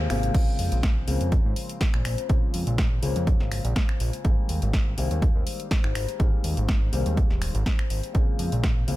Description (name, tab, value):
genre	filtered disco house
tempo	123 BPM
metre	4/4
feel	swing 54% on 16ths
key	Bb dorian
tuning	A4 = 440 Hz
part	dark baby grand piano	accompaniment	0.0-9.0 s	C3 to C4	-31 LUFS	left 4 dB	phaser, sidechain pumping
part	fat analog bass	bass	0.0-9.0 s	Eb1 to Ab2	-27 LUFS	equal	sidechain pumping
part	house drum kit	drums	0.1-9.0 s	crash cymbal, finger snaps, hi-hat, snare drum	-33 LUFS	equal	none
part	electronic kick drum	drums	0.3-8.7 s	none	-23 LUFS	equal	none
room	little or no reverb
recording	none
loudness	-22 LUFS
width	side -17 dB against mid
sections	0.3-9.0 A section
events	drop 0.3-9.0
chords	0.3 Bbm9; 4.2 Abmaj9; 8.1 Bbm9